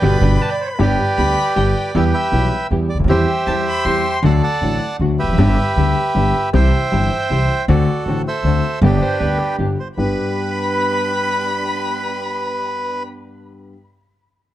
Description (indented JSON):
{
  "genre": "tango",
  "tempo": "157 BPM",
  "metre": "3/4",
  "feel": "rubato",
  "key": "G major",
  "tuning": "A4 = 440 Hz",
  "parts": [
    { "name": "bandoneon", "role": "melody", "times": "0.0-13.0 s", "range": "D4 to A5", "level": "-20 LUFS", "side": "right 2 dB", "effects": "none" },
    { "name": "warm clarinet", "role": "second line", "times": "0.0-0.8, 9.0-13.0 s", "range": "G4 to D5", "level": "-26 LUFS", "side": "right 4 dB", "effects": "none" },
    { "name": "warm violin", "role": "second line", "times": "0.0-4.1, 10.0-13.0 s", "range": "G5 to C6", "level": "-25 LUFS", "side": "left 4 dB", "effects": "none" },
    { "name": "warm concert grand piano", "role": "accompaniment", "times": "0.0-13.7 s", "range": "G1 to G4", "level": "-19 LUFS", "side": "left 2 dB", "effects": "none" },
    { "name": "muted studio string section", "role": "stabs", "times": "0.0-13.0 s", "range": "A3 to G4", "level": "-29 LUFS", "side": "right 3 dB", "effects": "none" },
    { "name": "upright bass", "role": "bass", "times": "0.0-10.1 s", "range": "E1 to E2", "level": "-19 LUFS", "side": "right 1 dB", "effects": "none" }
  ],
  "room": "light reverb, studio reverb",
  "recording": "dark, warm production",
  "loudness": "-15 LUFS",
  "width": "side -13 dB against mid",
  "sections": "0.8-10.0 A section; 10.0-12.3 B section",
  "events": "band accent 0.0-0.8",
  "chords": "0.0 G; 1.9 Em; 3.1 C/E; 4.2 D; 5.4 G; 6.5 C; 7.7 D7; 8.8 G"
}